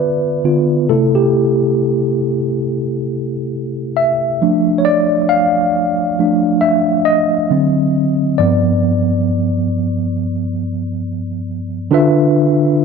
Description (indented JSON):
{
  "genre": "R&B",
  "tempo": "68 BPM",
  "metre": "4/4",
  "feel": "swing 58% on 16ths",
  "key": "D dorian",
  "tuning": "A4 = 443 Hz",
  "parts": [
    { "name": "tine electric piano", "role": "solo", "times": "0.0-12.8 s", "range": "G2 to F5", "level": "-13 LUFS", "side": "equal", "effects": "fast stereo tremolo" }
  ],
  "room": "moderate plate reverb, RT60 2.8 s",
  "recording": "dark, warm production",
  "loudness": "-13 LUFS",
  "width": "side -5 dB against mid",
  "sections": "0.0-11.9 A section",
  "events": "tine electric piano solo 0.0-11.9",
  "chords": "0.0 Dm69; 0.9 C6; 4.4 F6; 7.5 D7b9; 8.4 G7; 11.9 Dm69"
}